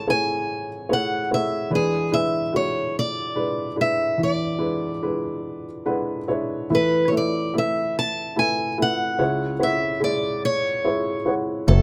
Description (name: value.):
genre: folk.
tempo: 48 BPM (dotted quarters).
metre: 6/8.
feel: straight.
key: unclear.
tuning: A4 = 440 Hz.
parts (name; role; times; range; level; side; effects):
picked steel-string acoustic guitar; melody; 0.0-11.8 s; G#4 to A5; -26 LUFS; equal; none.
felt-muted upright piano; accompaniment; 0.0-11.8 s; F#1 to F#5; -26 LUFS; equal; none.
fingered electric bass; bass; 11.7-11.8 s; F#1; -15 LUFS; equal; none.
room: little or no reverb.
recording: close, detailed microphones.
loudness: -23 LUFS.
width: mono.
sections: 0.0-6.7 A section; 6.7-11.8 B section.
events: none.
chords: 0.0 Amaj7; 1.7 E7; 6.7 Esus4; 9.2 C#m.